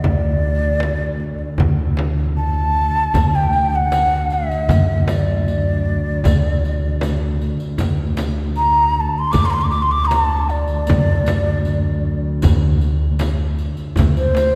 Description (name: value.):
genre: Persian modal ensemble.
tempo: 78 BPM.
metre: 4/4.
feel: straight.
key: D dastgah homayun.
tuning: A4 = 440 Hz.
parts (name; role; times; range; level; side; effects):
breathy mellow ney; melody; 0.0-14.6 s; C5 to D6; -22 LUFS; equal; none.
upright bass; bass; 0.0-14.6 s; D2 to F#2; -23 LUFS; equal; none.
warm double bass; drone; 0.0-14.6 s; D2; -26 LUFS; equal; none.
frame drum; percussion; 0.0-14.5 s; none; -26 LUFS; equal; none.
tombak; percussion; 0.0-14.5 s; none; -26 LUFS; equal; none.
riq; percussion; 3.1-14.5 s; none; -34 LUFS; equal; none.
room: wet church reverb, RT60 2.8 s.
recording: recorded in a church or concert hall.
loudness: -18 LUFS.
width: mono.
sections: 0.0-14.6 A section.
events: none.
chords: none.